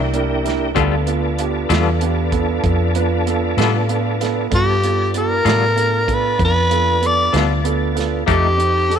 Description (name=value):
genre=slow blues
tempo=64 BPM (dotted quarters)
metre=12/8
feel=straight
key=unclear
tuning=A4 = 435 Hz
part: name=warm upright piano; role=accompaniment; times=0.0-9.0 s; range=B3 to C5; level=-23 LUFS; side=right 13 dB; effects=none
part: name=tonewheel organ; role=sustained chords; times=0.0-9.0 s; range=Bb3 to A5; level=-24 LUFS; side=equal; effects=slow rotary speaker, chorus vibrato
part: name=vintage muted fingered electric bass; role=bass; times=0.0-9.0 s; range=C2 to A2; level=-20 LUFS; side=left 1 dB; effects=none
part: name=warm soul drum kit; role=drums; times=0.1-9.0 s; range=hi-hat, kick drum, snare drum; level=-24 LUFS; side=right 2 dB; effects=none
part: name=semi-hollow electric guitar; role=accompaniment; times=0.7-8.5 s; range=F3 to A4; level=-23 LUFS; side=left 13 dB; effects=tremolo
part: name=growling tenor saxophone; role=melody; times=4.6-9.0 s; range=G4 to D5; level=-17 LUFS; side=left 1 dB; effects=none
room=light reverb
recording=1960s-style stereo with parts hard left and right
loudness=-15 LUFS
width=side -8 dB against mid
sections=0.0-9.0 A section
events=none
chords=0.0 C9; 0.8 G9; 8.3 F9